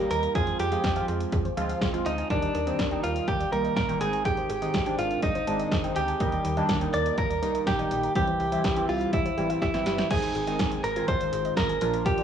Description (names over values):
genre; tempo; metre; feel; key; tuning
synth-pop; 123 BPM; 4/4; straight; unclear; A4 = 440 Hz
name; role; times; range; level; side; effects
direct-recorded clean electric guitar; melody; 0.0-12.2 s; D4 to D5; -28 LUFS; right 1 dB; cassette tape, analog delay
warm analog keys; accompaniment; 0.0-12.2 s; Eb3 to Ab4; -30 LUFS; equal; chorus, phaser, cassette tape
soft round pluck; arpeggios; 0.0-12.2 s; G4 to Ab6; -36 LUFS; right 1 dB; chorus, cassette tape, analog delay
slap-like FM bass; bass; 0.0-12.2 s; F1 to F2; -34 LUFS; equal; none
punchy analog drum machine; drums; 0.1-12.2 s; crash cymbal, hi-hat, kick drum, snare drum; -30 LUFS; equal; overdrive, cassette tape
room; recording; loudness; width
moderate spring reverb, RT60 2.1 s; home recording on cassette, small room ambience; -24 LUFS; side -8 dB against mid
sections
0.0-10.1 A section; 10.1-12.2 B section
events
drum fill 9.6-10.1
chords
0.4 Fmadd9; 2.3 Ebmaj7; 4.0 Abmaj7; 6.2 Ebmaj7; 8.2 C; 10.1 Ab